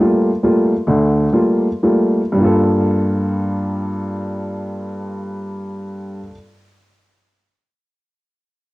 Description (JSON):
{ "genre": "jazz", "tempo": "104-146 BPM", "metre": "3/4", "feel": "swing 66% on 8ths", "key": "G minor", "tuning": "A4 = 439 Hz", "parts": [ { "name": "warm upright piano", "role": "solo", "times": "0.0-6.3 s", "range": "D2 to A4", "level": "-15 LUFS", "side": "equal", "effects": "cassette tape" } ], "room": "light reverb, studio reverb", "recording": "home recording on cassette", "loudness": "-15 LUFS", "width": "side -19 dB against mid", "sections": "0.0-2.4 A section; 2.4-5.8 B section", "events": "slowing down 0.0-2.4", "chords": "0.0 Gm9" }